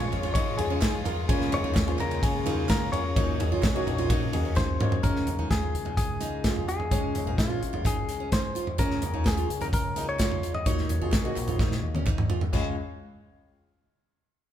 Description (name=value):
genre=piano-driven pop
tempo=128 BPM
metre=4/4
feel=straight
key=Db major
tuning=A4 = 443 Hz
part: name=direct-recorded clean electric guitar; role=melody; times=0.0-12.1 s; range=F4 to Eb5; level=-33 LUFS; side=left 3 dB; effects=none
part: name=warm upright piano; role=accompaniment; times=0.0-12.7 s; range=Db2 to Eb5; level=-34 LUFS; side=left 5 dB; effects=none
part: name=warm studio string section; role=sustained chords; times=0.0-5.0 s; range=F3 to F4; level=-37 LUFS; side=left 1 dB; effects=none
part: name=picked steel-string acoustic guitar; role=riff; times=0.0-12.8 s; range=Db4 to Gb4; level=-34 LUFS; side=right 6 dB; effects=none
part: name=fingered electric bass with an envelope filter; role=bass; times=0.0-12.8 s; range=Ab1 to Eb2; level=-33 LUFS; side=equal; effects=none
part: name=modern studio drum kit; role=drums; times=0.0-12.6 s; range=crash cymbal, hi-hat, kick drum, ride cymbal, snare drum, toms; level=-27 LUFS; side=equal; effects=none
part: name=group handclap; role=percussion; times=0.8-4.7, 9.3-12.8 s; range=none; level=-45 LUFS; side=right 4 dB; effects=none
room=moderate large studio reverb, RT60 1.5 s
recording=band playing live in one room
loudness=-24 LUFS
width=side -10 dB against mid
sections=0.0-5.0 A section; 5.0-12.5 B section; 12.5-14.4 C section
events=drum fill 4.6-5.0, 11.6-12.5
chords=0.0 Db; 1.3 Bbm7/Db; 3.2 Ebm7; 5.0 Db; 8.8 Bbm7/Db; 10.7 Ebm7; 12.5 Db